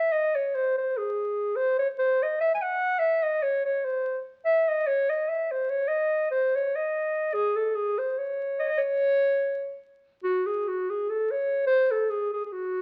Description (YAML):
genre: balkan folk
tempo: free time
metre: none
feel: none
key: C# harmonic minor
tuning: A4 = 438 Hz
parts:
  - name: mellow clarinet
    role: solo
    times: 0.0-12.8 s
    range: F#4 to G#5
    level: -26 LUFS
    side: equal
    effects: none
room: moderate large studio reverb, RT60 1.2 s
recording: very old 78 rpm record, vinyl crackle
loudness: -26 LUFS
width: mono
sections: 0.0-10.2 A section; 10.2-12.8 A section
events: none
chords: none